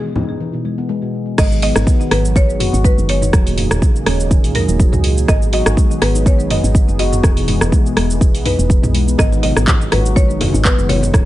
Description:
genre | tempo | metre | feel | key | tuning
afro house | 123 BPM | 4/4 | swing 54% on 16ths | G# minor | A4 = 439 Hz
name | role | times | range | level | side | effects
buzzing marimba with medium hard mallets | melody | 0.0-11.3 s | G#4 to D#5 | -23 LUFS | right 1 dB | digital delay
warm analog pad | sustained chords | 0.0-11.3 s | C#3 to G#4 | -25 LUFS | right 1 dB | chorus, sidechain pumping
handpan | arpeggios | 0.2-10.9 s | A#2 to F#4 | -21 LUFS | left 2 dB | sidechain pumping, digital delay
congas | percussion | 0.2-0.3, 9.2-11.2 s | none | -23 LUFS | left 2 dB | none
woody FM bass | bass | 1.4-11.3 s | D#1 to C#2 | -18 LUFS | equal | sidechain pumping
electronic kick drum | drums | 1.4-11.2 s | none | -13 LUFS | equal | none
house drum kit | drums | 1.4-11.2 s | cabasa, crash cymbal, handclaps, hi-hat, rim click, toms | -20 LUFS | equal | none
room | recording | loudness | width
little or no reverb | nothing above 10.9 kHz | -12 LUFS | side -15 dB against mid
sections
0.0-1.4 A section; 1.4-11.3 B section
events
drop 1.4-11.3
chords
0.0 Emaj7; 1.4 G#m7; 3.3 D#7sus4; 5.3 G#m7; 7.2 Emaj7; 9.2 G#m7

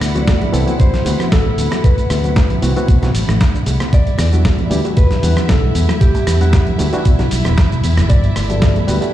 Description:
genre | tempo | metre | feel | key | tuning
nu-disco, nu disco | 115 BPM | 4/4 | swing 53% on 16ths | unclear | A4 = 440 Hz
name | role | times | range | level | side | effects
mellow electric guitar | melody | 0.0-9.1 s | G4 to D5 | -24 LUFS | equal | analog delay
warm studio string section | sustained chords | 0.0-9.1 s | E4 to F#5 | -27 LUFS | right 2 dB | sidechain pumping
soft round pluck | arpeggios | 0.0-9.1 s | F#3 to F#4 | -26 LUFS | left 6 dB | none
fingered electric bass | bass | 0.0-9.0 s | E1 to B2 | -16 LUFS | equal | none
dusty soul sampler-style drum kit | drums | 0.0-9.1 s | hi-hat, rim click, shaker, snare drum | -22 LUFS | equal | overdrive
reed electric piano | accompaniment | 0.1-9.1 s | E3 to F#5 | -22 LUFS | equal | fast tremolo, tape echo
bongos and congas | percussion | 0.2-9.0 s | none | -26 LUFS | right 6 dB | none
electronic kick drum | drums | 0.3-8.7 s | none | -13 LUFS | equal | none
room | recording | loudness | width
little or no reverb | played on a big sound system in a bare room, large studio reverb | -12 LUFS | side -12 dB against mid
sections
0.0-9.1 A section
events
none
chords
0.0 D13; 3.9 Em9; 8.1 Gmaj9

